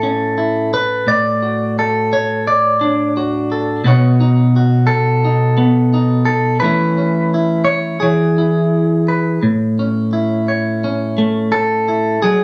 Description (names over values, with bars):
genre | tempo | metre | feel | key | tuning
folk, solo fingerstyle acoustic guitar | 86 BPM | 4/4 | straight | A major | A4 = 442 Hz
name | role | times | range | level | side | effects
clean electric guitar | solo | 0.0-12.4 s | A2 to D5 | -15 LUFS | equal | none
room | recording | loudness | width
wet club reverb, RT60 0.7 s | none | -15 LUFS | mono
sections
0.0-9.4 A section; 9.4-12.4 A section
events
none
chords
0.0 A; 1.1 D/A; 3.8 Badd9; 6.6 A/E; 8.0 E; 9.4 A